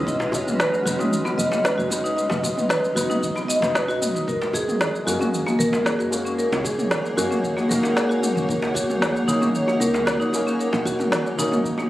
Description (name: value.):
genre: organic downtempo.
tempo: 114 BPM.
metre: 4/4.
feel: straight.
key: unclear.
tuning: A4 = 443 Hz.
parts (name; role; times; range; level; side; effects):
felt-muted upright piano; accompaniment; 0.0-11.9 s; F#3 to A#4; -29 LUFS; left 1 dB; sidechain pumping, digital delay.
granular cloud pad; sustained chords; 0.0-11.9 s; G#3 to F#5; -27 LUFS; equal; built-in reverb, sidechain pumping.
marimba with medium mallets; arpeggios; 0.0-11.9 s; A#3 to D#5; -23 LUFS; equal; low-pass filter, digital delay.
woody FM bass; bass; 0.0-11.5 s; D#1 to F#2; -30 LUFS; equal; sidechain pumping.
electronic kick drum; drums; 0.1-11.8 s; none; -34 LUFS; equal; overdrive, studio ambience.
organic electronic drum kit; drums; 0.1-11.9 s; shaker, snare drum, toms; -26 LUFS; equal; overdrive, studio ambience.
djembe; percussion; 0.2-11.9 s; none; -32 LUFS; equal; none.
room: light reverb, studio ambience.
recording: recorded on a phone in the room, club reverb.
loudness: -19 LUFS.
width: side -15 dB against mid.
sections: 0.0-11.9 A section.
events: none.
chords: 0.1 B; 4.3 F#add9; 8.5 D#m7.